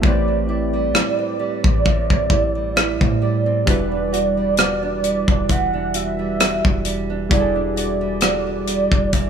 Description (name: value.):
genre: contemporary R&B.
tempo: 66 BPM.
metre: 4/4.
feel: swing 54% on 16ths.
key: E minor.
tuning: A4 = 439 Hz.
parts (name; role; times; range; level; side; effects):
warm velvety synth lead; melody; 0.0-9.3 s; D5 to F#5; -23 LUFS; right 2 dB; chorus, tremolo, tape echo.
warm analog keys; accompaniment; 0.0-9.3 s; G3 to B4; -25 LUFS; equal; chorus.
nylon-string guitar; arpeggios; 0.0-9.3 s; A2 to A4; -26 LUFS; right 8 dB; tape echo.
soft 808-style bass; bass; 0.0-9.3 s; E1 to A2; -24 LUFS; equal; none.
tight funk drum kit; drums; 0.0-9.3 s; hi-hat, kick drum, rim click; -19 LUFS; left 1 dB; none.
room: small room ambience.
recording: none.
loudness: -16 LUFS.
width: side -7 dB against mid.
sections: 0.0-9.3 A section.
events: break 0.0-3.7.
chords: 0.0 Am7; 3.7 Em9.